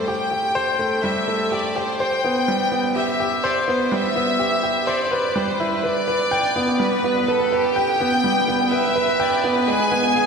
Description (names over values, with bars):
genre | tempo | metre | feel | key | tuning
electronica | 125 BPM | 4/4 | straight | unclear | A4 = 442 Hz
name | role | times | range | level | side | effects
clear studio violin section | melody | 0.0-10.3 s | G4 to G#5 | -22 LUFS | left 2 dB | none
clear upright piano | riff | 0.0-10.3 s | G3 to G5 | -20 LUFS | right 1 dB | none
room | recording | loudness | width
wet scoring stage reverb, RT60 1.9 s | none | -18 LUFS | side -5 dB against mid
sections
0.0-10.3 A section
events
build-up 0.0-10.3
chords
0.0 Am7; 2.0 Cmaj7; 5.8 G; 9.7 E (rootless)